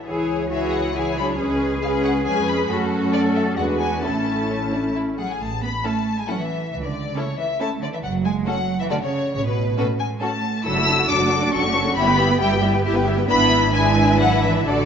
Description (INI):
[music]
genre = quick classical-period movement for string orchestra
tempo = 136 BPM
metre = 3/4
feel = rubato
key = A major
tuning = A4 = 439 Hz
[part]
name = rich studio violin section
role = second line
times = 0.1-14.9 s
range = C#4 to G5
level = -27 LUFS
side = left 3 dB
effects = none
[part]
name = warm studio viola section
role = accompaniment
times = 0.1-14.9 s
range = E3 to G4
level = -24 LUFS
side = equal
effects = none
[part]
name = rich studio double bass section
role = bass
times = 0.1-14.9 s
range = F#1 to F#2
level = -26 LUFS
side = right 4 dB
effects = none
[part]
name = warm studio cello section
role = bass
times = 0.1-14.9 s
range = B2 to A4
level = -26 LUFS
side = right 3 dB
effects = none
[part]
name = rich studio violin section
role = melody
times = 0.5-14.9 s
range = B4 to E6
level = -23 LUFS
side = left 3 dB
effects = none
[sound]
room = wet scoring stage reverb, RT60 1.7 s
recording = nothing above 7.8 kHz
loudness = -18 LUFS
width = side -7 dB against mid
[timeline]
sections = 0.0-5.4 A section; 5.4-14.9 B section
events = none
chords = 0.1 C#m; 1.4 C#7; 2.7 F#m; 3.6 E9; 4.0 A; 6.7 A/C#; 8.0 F#m; 9.3 F#m/A (rootless); 10.7 D/F#; 12.0 Em/G; 13.3 E7/G#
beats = | 0.07 0.52 0.96 | 1.40 1.83 2.27 | 2.70 3.14 3.58 | 4.04 4.50 4.95 | 5.40 5.85 6.29 | 6.72 7.16 7.60 | 8.04 8.47 8.90 | 9.34 9.78 10.21 | 10.65 11.10 11.53 | 11.97 12.42 12.86 | 13.30 13.74 14.20 | 14.67